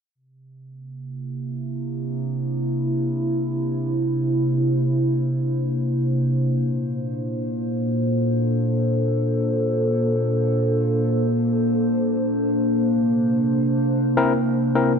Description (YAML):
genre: ambient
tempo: free time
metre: none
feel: none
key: C mixolydian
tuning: A4 = 442 Hz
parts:
  - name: warbly tape-like pad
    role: sustained chords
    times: 0.9-15.0 s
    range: Bb2 to C5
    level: -20 LUFS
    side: equal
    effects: chorus, built-in reverb
  - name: barky tine electric piano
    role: stabs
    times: 14.2-14.9 s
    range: C4 to Bb4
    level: -20 LUFS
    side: left 4 dB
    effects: vintage 12-bit sampler grit
room: wet echo chamber reverb, RT60 1.8 s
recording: echo-heavy mix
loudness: -20 LUFS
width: side -6 dB against mid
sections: 0.1-15.0 A section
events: none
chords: 0.1 C7; 6.5 Bbmaj7; 12.8 C7